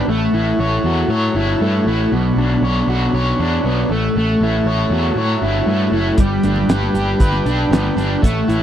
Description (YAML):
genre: psychedelic rock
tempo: 118 BPM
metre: 4/4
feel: straight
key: unclear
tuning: A4 = 440 Hz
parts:
  - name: overdriven combo organ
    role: sustained chords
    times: 0.0-8.6 s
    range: D4 to G5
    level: -28 LUFS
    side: right 3 dB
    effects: spring reverb
  - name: crunchy overdriven guitar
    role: riff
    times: 0.0-8.6 s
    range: B2 to C#5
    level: -17 LUFS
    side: equal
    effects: harmonic tremolo
  - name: fuzz picked electric bass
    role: bass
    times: 0.1-8.6 s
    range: F#1 to A2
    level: -19 LUFS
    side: equal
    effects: overdrive
  - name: cloth-damped thuddy drum kit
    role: drums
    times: 6.2-8.6 s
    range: hi-hat, kick drum, snare drum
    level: -15 LUFS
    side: equal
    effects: none
  - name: congas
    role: percussion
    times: 6.4-8.6 s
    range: none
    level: -28 LUFS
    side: right 3 dB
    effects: none
room: small room ambience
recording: dry, close 1970s-style studio recording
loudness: -14 LUFS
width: side -10 dB against mid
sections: 0.0-8.6 A section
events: none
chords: 0.1 A6; 2.1 Bmadd9; 3.9 A6; 6.2 G